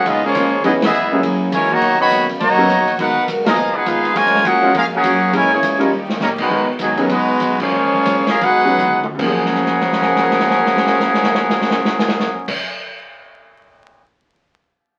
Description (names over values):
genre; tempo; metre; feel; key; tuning
jazz, big band swing; 142-205 BPM; 4/4; swing 62% on 8ths; F# major; A4 = 440 Hz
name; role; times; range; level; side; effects
bright trumpet section; melody; 0.0-12.5 s; F#3 to B5; -18 LUFS; equal; none
clear trombone section; second line; 0.0-12.5 s; F#2 to F#4; -25 LUFS; equal; none
clear trombone section; sustained chords; 0.0-6.5 s; B2 to F#4; -33 LUFS; equal; none
upright bass; bass; 0.0-12.5 s; E#1 to A#2; -32 LUFS; equal; none
picked acoustic archtop guitar; accompaniment; 0.1-12.7 s; G#2 to A#4; -31 LUFS; equal; none
swinging big-band drum kit; drums; 0.1-14.0 s; crash cymbal, hi-hat, kick drum, ride cymbal, snare drum, toms; -26 LUFS; equal; none
warm concert grand piano; accompaniment; 0.3-12.6 s; F#2 to A#4; -23 LUFS; equal; none
room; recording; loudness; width
wet studio reverb, RT60 0.5 s; very old 78 rpm record, vinyl crackle; -16 LUFS; mono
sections
0.0-6.5 A section; 6.5-9.2 B section; 9.2-12.6 C section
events
band accent 0.8, 3.4, 6.3, 7.6; drum fill 5.9, 8.8-9.2, 9.4-12.5; slowing down 6.5-9.2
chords
0.0 A#m7; 0.6 C#m9; 1.2 F#9; 1.8 Bmaj9; 3.0 G#m9; 3.6 C#13; 4.1 F#maj9; 5.3 A#m7b5; 5.9 D#7; 6.5 G#m7; 7.1 C#9sus4; 7.7 A#m7; 8.4 C#9sus4; 9.2 F#maj9